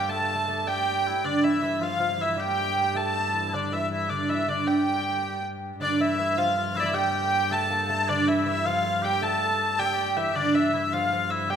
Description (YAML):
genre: medieval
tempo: 105 BPM (dotted quarters)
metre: 6/8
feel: straight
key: unclear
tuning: A4 = 440 Hz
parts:
  - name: clear hurdy-gurdy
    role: melody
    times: 0.0-11.6 s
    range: D5 to A5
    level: -25 LUFS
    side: right 1 dB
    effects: none
  - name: lute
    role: second line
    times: 0.0-11.6 s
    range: D3 to Bb3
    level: -29 LUFS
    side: right 2 dB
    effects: none
  - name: warm oboe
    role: second line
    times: 0.0-11.6 s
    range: D4 to A4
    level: -32 LUFS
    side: left 7 dB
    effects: tape echo
  - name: warm viola da gamba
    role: drone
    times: 0.0-11.6 s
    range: G2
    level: -34 LUFS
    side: left 1 dB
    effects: none
room: wet recital hall reverb, RT60 1.4 s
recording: none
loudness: -23 LUFS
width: side -8 dB against mid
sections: 0.0-5.8 A section; 5.8-11.6 A section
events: none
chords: none